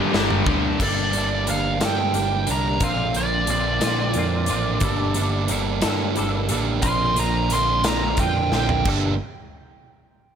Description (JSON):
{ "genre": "quiet-loud alternative rock", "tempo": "60 BPM (dotted quarters)", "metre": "6/8", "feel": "straight", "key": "G minor", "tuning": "A4 = 440 Hz", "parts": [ { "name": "smooth overdriven lead guitar", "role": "melody", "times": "0.0-8.9 s", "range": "G4 to C6", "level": "-25 LUFS", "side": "right 1 dB", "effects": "none" }, { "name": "distorted electric guitar", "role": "riff", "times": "0.0-0.8 s", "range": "G2 to G3", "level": "-26 LUFS", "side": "equal", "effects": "distortion" }, { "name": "overdriven electric guitar", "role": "riff", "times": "0.0-0.8 s", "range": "G2 to G3", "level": "-24 LUFS", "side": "left 12 dB", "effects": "none" }, { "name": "overdriven semi-hollow guitar", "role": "riff", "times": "0.0-9.1 s", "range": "G2 to G4", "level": "-25 LUFS", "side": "right 11 dB", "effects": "none" }, { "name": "overdriven picked electric bass", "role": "bass", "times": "0.1-9.2 s", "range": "G1 to G2", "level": "-26 LUFS", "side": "left 1 dB", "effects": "none" }, { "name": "big rock drum kit", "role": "drums", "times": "0.1-9.0 s", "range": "crash cymbal, hi-hat, kick drum, snare drum, toms", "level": "-26 LUFS", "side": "left 1 dB", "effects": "none" }, { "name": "semi-hollow electric guitar", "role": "arpeggios", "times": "0.8-9.1 s", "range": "G2 to A4", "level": "-28 LUFS", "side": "left 5 dB", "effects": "ensemble chorus" } ], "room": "light reverb", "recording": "none", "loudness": "-19 LUFS", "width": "side -8 dB against mid", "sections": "0.8-8.9 A section; 8.9-10.4 B section", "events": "drum fill 0.0-0.8, 8.5-8.9; lead electric guitar solo 0.8-8.9", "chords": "0.0 Gm; 0.8 Gmadd9; 2.8 Bbadd9; 4.8 Gmadd9; 6.8 Bbadd9; 8.9 Gmadd9" }